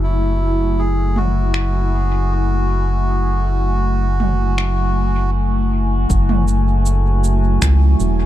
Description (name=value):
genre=ambient dub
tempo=79 BPM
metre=4/4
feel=straight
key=F# minor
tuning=A4 = 439 Hz
part: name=melodica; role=melody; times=0.0-5.3 s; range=E4 to G#4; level=-26 LUFS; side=right 1 dB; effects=dub echo
part: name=warbly tape-like pad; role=sustained chords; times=0.0-8.3 s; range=F#3 to G#5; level=-22 LUFS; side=left 1 dB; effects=chorus, built-in reverb, phaser
part: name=round analog bass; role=bass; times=0.0-8.3 s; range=E1 to C#2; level=-16 LUFS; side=equal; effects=tube saturation
part: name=organic electronic drum kit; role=drums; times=1.2-8.2 s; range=cabasa, finger snaps, toms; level=-24 LUFS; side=right 1 dB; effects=low-pass filter on toms, low-pass filter on snare, low-pass filter on perc, low-pass filter on room, dub echo
part: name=electronic kick drum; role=drums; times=6.1-7.8 s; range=none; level=-19 LUFS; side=equal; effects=none
room=little or no reverb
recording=dark, warm production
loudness=-15 LUFS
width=side -13 dB against mid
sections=0.0-6.1 A section; 6.1-8.3 B section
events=filter sweep on drum 0.0-6.1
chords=0.0 F#m9